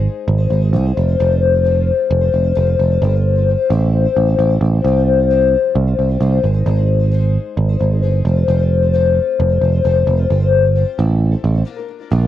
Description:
folk rock and heartland rock; 132 BPM; 4/4; straight; A4 = 441 Hz
picked twelve-string acoustic guitar; accompaniment; 0.0-12.3 s; A2 to C5; -17 LUFS; left 8 dB; cassette tape
picked electric bass; bass; 0.0-12.3 s; F1 to C2; -14 LUFS; right 2 dB
little or no reverb; home recording on cassette; -12 LUFS; side -12 dB against mid
0.0-12.1 A section
break 11.7-12.1
0.0 Ab; 1.0 F; 3.0 Csus4/G; 3.7 Am7; 4.8 Csus4; 6.4 Ab; 8.3 F; 10.3 Csus4/G; 11.0 Am7; 11.7 Bb
0.28 0.74 | 1.20 1.65 2.11 2.56 | 3.02 3.48 3.93 4.39 | 4.84 5.30 5.76 6.21 | 6.67 7.12 7.58 8.03 | 8.49 8.94 9.40 9.85 | 10.31 10.76 11.22 11.67 | 12.12

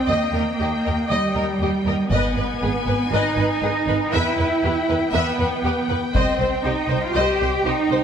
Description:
cinematic, epic orchestral film score; 119 BPM; 4/4; straight; C minor; A4 = 438 Hz
rich studio violin section; melody; 0.0-8.0 s; G5 to Ab5; -30 LUFS; left 4 dB
rich symphonic cello section; bass; 0.0-8.0 s; G3 to G4; -22 LUFS; right 2 dB
warm symphonic violin section; second line; 0.1-8.0 s; G4 to E5; -26 LUFS; left 4 dB
rich studio viola section; accompaniment; 0.1-8.0 s; Cb5 to Eb5; -27 LUFS; equal
rich symphonic double bass section; bass; 0.1-8.0 s; Ab1 to E2; -25 LUFS; right 3 dB
taiko ensemble; drums; 2.1-3.1, 6.1-7.1 s; -25 LUFS; left 1 dB
moderate concert hall reverb, RT60 2.3 s; -18 LUFS; side -8 dB against mid
0.0-8.0 A section
0.1 Eb; 2.1 Abm; 4.1 Em; 6.1 Cm
| 0.10 0.60 1.10 1.61 | 2.11 2.62 3.12 3.62 | 4.13 4.63 5.14 5.64 | 6.15 6.65 7.16 7.66

